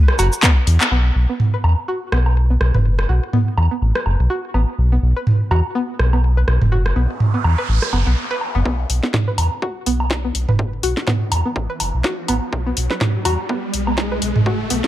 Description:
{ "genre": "minimal techno", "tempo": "124 BPM", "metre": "4/4", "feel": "swing 57% on 16ths", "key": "unclear", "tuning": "A4 = 440 Hz", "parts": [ { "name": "booming analog drum machine", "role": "percussion", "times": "0.1-14.4 s", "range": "rim click, toms, woodblock", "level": "-21 LUFS", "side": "right 2 dB", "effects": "none" }, { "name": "string-like resonator pluck", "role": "riff", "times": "0.2-14.8 s", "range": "B3 to B4", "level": "-25 LUFS", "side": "equal", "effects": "chorus, cassette tape, sidechain pumping, dub echo" }, { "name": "round analog bass", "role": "bass", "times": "0.2-14.8 s", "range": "F#1 to E2", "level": "-17 LUFS", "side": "equal", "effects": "sidechain pumping" }, { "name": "house drum kit", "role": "drums", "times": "0.2-0.9, 8.9-14.9 s", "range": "handclaps, hi-hat, shaker, snare drum", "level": "-22 LUFS", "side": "left 1 dB", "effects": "overdrive, low-pass filter on perc, low-pass filter on hats, low-pass filter on snare" }, { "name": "electronic kick drum", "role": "drums", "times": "0.4-0.5, 8.7-14.6 s", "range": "none", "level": "-18 LUFS", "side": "equal", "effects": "overdrive, high-pass filter on kick" }, { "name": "noise sweep and riser", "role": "sound effects", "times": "7.0-14.9 s", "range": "none", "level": "-27 LUFS", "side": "equal", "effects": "none" } ], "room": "light reverb, digital ambience", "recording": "dark, warm production", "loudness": "-16 LUFS", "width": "side -14 dB against mid", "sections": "0.9-8.7 A section; 8.7-14.9 B section", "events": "drum fill 0.4-0.9; band accent 0.8; filter sweep on synth pluck 0.9-8.7; noise sweep 7.0-8.7; build-up 8.7-14.9; riser 8.7-14.9", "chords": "0.0 B5" }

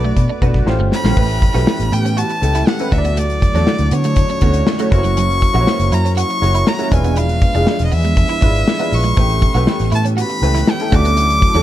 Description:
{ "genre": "polished 1980s jazz-funk pop", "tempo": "120 BPM", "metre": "4/4", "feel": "straight", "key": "unclear", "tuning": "A4 = 437 Hz", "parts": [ { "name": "rich violin", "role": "melody", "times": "0.0-11.6 s", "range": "C#5 to D6", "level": "-20 LUFS", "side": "left 1 dB", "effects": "none" }, { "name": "bright baby grand piano", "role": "accompaniment", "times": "0.0-11.6 s", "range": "G#3 to D5", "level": "-22 LUFS", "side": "equal", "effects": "analog chorus" }, { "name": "clean electric guitar", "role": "riff", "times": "0.0-11.6 s", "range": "F#3 to F#4", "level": "-26 LUFS", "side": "right 6 dB", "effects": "ensemble chorus" }, { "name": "vintage muted fingered electric bass", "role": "bass", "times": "0.0-11.6 s", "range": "E1 to D3", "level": "-17 LUFS", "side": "equal", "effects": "none" }, { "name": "modern studio drum kit", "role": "drums", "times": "0.2-11.6 s", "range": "crash cymbal, hi-hat, kick drum, snare drum", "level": "-17 LUFS", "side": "equal", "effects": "none" }, { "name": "hollow soft pad", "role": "sustained chords", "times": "1.2-11.6 s", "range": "D3 to G4", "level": "-25 LUFS", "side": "equal", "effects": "chorus" } ], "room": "small room reverb", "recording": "dark, warm production", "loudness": "-13 LUFS", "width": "side -13 dB against mid", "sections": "0.0-1.2 A section; 1.2-11.6 B section", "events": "drum fill 0.7-1.2", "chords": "0.0 Bm7; 0.7 A7alt; 1.2 A9; 2.9 Dmaj7; 4.9 F#7; 6.9 E7b9; 9.2 A9; 10.9 Dmaj7" }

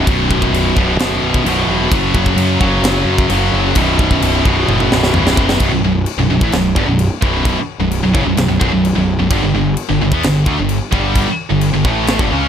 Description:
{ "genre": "heavy metal", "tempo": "130 BPM", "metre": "4/4", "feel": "straight", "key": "B minor", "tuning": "A4 = 440 Hz", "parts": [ { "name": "heavy high-gain guitar", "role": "riff", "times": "0.0-12.5 s", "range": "B1 to C#4", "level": "-14 LUFS", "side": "equal", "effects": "distortion" }, { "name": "fuzz picked electric bass", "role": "bass", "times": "0.1-12.5 s", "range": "B0 to F#2", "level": "-18 LUFS", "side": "equal", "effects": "overdrive" }, { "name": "tight metal drum kit", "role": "drums", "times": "0.1-12.3 s", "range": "china cymbal, crash cymbal, kick drum, snare drum, toms", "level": "-19 LUFS", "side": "equal", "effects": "none" } ], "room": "little or no reverb", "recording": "none", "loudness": "-12 LUFS", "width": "side -8 dB against mid", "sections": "0.0-5.6 A section; 5.6-12.5 B section", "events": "drum fill 4.7-5.6", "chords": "0.0 B5; 1.9 F#5; 3.8 B5; 9.3 G5" }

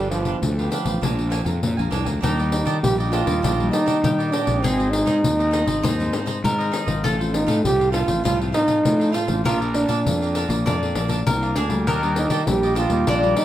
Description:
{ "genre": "samba and choro", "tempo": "100 BPM", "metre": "4/4", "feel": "straight", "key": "Eb major", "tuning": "A4 = 436 Hz", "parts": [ { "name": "warm trombone", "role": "melody", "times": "0.0-13.4 s", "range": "F3 to G4", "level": "-22 LUFS", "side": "right 2 dB", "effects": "none" }, { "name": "cavaquinho", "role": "accompaniment", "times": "0.0-13.4 s", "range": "D4 to Ab5", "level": "-29 LUFS", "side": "right 3 dB", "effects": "none" }, { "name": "nylon-string guitar", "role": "accompaniment", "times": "0.0-13.4 s", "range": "F2 to F4", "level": "-28 LUFS", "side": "left 3 dB", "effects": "none" }, { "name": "fuzz fingered electric bass", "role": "bass", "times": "0.0-13.3 s", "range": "G1 to Eb3", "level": "-24 LUFS", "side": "equal", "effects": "overdrive" }, { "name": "pandeiro", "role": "percussion", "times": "0.1-13.4 s", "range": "none", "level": "-26 LUFS", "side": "left 3 dB", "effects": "none" }, { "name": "bowl-back mandolin", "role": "second line", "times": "2.2-13.4 s", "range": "Eb4 to D5", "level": "-28 LUFS", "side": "left 3 dB", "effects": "none" } ], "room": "moderate studio reverb, RT60 0.6 s", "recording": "none", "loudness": "-18 LUFS", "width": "side -12 dB against mid", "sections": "0.0-2.2 A section; 2.2-13.4 B section", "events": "none", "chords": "0.0 G7; 1.0 Bb7; 2.2 Ebmaj7; 4.6 Ab; 7.0 F/A; 9.5 Bb; 11.9 Ebmaj7" }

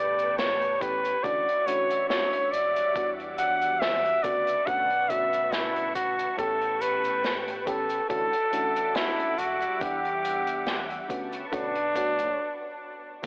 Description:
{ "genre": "vaporwave", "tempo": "70 BPM", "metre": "4/4", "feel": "swing 53% on 16ths", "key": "unclear", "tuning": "A4 = 440 Hz", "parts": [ { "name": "warm flugelhorn", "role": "melody", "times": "0.0-12.8 s", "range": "D4 to F#5", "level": "-25 LUFS", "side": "equal", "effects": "vintage 12-bit sampler grit, tape echo" }, { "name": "mellow FM electric piano", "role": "accompaniment", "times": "0.0-13.3 s", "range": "C#3 to F#5", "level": "-35 LUFS", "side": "equal", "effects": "wide subtle chorus, tape echo" }, { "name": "soft string machine", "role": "sustained chords", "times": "0.0-12.4 s", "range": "G3 to D6", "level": "-36 LUFS", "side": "equal", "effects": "ensemble chorus, vintage 12-bit sampler grit" }, { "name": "fingered electric bass", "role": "bass", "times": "0.0-13.3 s", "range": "E1 to E2", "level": "-49 LUFS", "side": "equal", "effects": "none" }, { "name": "unplugged drum kit", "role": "drums", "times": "0.2-13.3 s", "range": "cabasa, hi-hat, snare drum", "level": "-35 LUFS", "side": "equal", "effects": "gated reverb" }, { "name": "electronic kick drum", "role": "drums", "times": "0.8-13.3 s", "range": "none", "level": "-36 LUFS", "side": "equal", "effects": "none" } ], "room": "moderate huge ambient reverb, RT60 5.1 s", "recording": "telephone sound", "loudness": "-24 LUFS", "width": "side -27 dB against mid", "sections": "0.0-13.2 A section", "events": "break 12.4-13.2", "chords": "0.0 A9; 1.2 Dmaj9; 2.5 Em9; 4.2 Bm9; 6.4 A9; 8.1 Dmaj9; 9.4 Em9; 11.1 Bm9" }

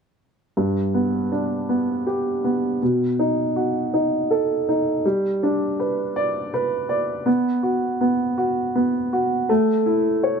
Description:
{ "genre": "pop", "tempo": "54 BPM (dotted quarters)", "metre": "6/8", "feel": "straight", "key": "G major", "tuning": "A4 = 440 Hz", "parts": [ { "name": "dark upright piano", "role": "accompaniment", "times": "0.6-10.4 s", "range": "G2 to D5", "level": "-19 LUFS", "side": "right 1 dB", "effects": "none" } ], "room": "light reverb", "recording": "none", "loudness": "-19 LUFS", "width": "side -6 dB against mid", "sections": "0.6-5.0 A section; 5.0-10.4 B section", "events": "none", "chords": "0.6 G; 2.8 B7; 5.0 G; 7.3 B5; 9.5 A" }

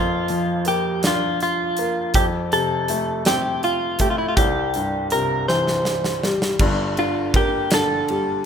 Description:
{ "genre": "six-eight pop ballad", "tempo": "54 BPM (dotted quarters)", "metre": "6/8", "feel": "straight", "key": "unclear", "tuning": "A4 = 439 Hz", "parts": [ { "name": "direct-recorded clean electric guitar", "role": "melody", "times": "0.0-8.5 s", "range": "E4 to C5", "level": "-21 LUFS", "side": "equal", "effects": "wide subtle chorus" }, { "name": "clear baby grand piano", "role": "accompaniment", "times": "0.0-8.5 s", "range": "G1 to D4", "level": "-23 LUFS", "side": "left 2 dB", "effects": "none" }, { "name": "huge arena drum kit", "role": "drums", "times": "0.3-8.3 s", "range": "crash cymbal, hi-hat, kick drum, ride cymbal, snare drum", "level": "-23 LUFS", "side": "right 1 dB", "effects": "none" } ], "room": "light reverb, studio ambience", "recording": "rough home demo mix", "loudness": "-18 LUFS", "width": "side -7 dB against mid", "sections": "0.0-6.6 A section; 6.6-8.5 B section", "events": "drum fill 5.5-6.6", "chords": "0.0 Bb; 2.1 F; 4.4 C; 6.6 Gmadd9" }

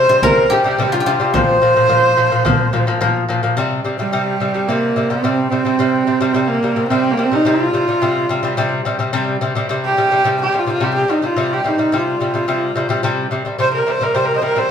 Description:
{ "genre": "mongolian traditional, Mongolian folk", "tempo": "108 BPM", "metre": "4/4", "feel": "straight", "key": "unclear", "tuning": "A4 = 440 Hz", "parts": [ { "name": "clear horsehead fiddle", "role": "melody", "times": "0.0-14.7 s", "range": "G3 to Eb5", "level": "-16 LUFS", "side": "right 2 dB", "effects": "none" }, { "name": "guzheng", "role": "second line", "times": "0.0-3.6 s", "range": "F4 to C5", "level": "-16 LUFS", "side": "left 2 dB", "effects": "none" }, { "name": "lute", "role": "arpeggios", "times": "0.0-14.7 s", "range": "Bb2 to G3", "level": "-18 LUFS", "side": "left 2 dB", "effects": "none" }, { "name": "frame drum", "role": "percussion", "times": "0.2-3.1 s", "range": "none", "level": "-22 LUFS", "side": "right 2 dB", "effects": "none" } ], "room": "wet large studio reverb, RT60 0.9 s", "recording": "band playing live in one room", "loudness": "-14 LUFS", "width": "side -8 dB against mid", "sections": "0.0-3.6 A section; 3.6-14.7 B section", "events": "none", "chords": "0.0 C5; 1.3 Bb5; 3.6 C5" }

